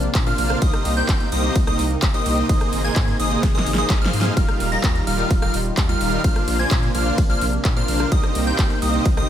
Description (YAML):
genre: EDM, festival progressive house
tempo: 128 BPM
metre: 4/4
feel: straight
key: C minor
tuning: A4 = 437 Hz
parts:
  - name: lush unison pad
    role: sustained chords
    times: 0.0-9.3 s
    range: C3 to Ab4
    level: -28 LUFS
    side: equal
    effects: chorus, sidechain pumping
  - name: saturated sub bass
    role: bass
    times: 0.0-9.2 s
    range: Eb1 to Bb2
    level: -25 LUFS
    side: equal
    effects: sidechain pumping
  - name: big-room dance drum kit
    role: drums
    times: 0.0-9.3 s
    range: handclaps, hi-hat, ride cymbal, rim click, snare drum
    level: -27 LUFS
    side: equal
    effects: overdrive, studio reverb
  - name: electronic kick drum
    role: drums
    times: 0.1-9.1 s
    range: none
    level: -19 LUFS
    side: equal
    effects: overdrive, studio reverb
  - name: plucky unison lead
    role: arpeggios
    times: 0.3-9.3 s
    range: Eb6 to Bb6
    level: -26 LUFS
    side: equal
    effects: phaser, sidechain pumping, dub echo
  - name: dense compressed supersaw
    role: riff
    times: 0.3-9.3 s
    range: G3 to Bb5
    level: -24 LUFS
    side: right 1 dB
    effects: sidechain pumping, dub echo
room: little or no reverb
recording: none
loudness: -17 LUFS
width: side -10 dB against mid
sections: 0.0-9.3 A section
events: drum fill 3.4-4.4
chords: 0.0 Bbadd9; 0.6 Cm7; 2.5 Abadd9; 4.4 Ebadd9; 6.2 Bbadd9; 8.1 Cm7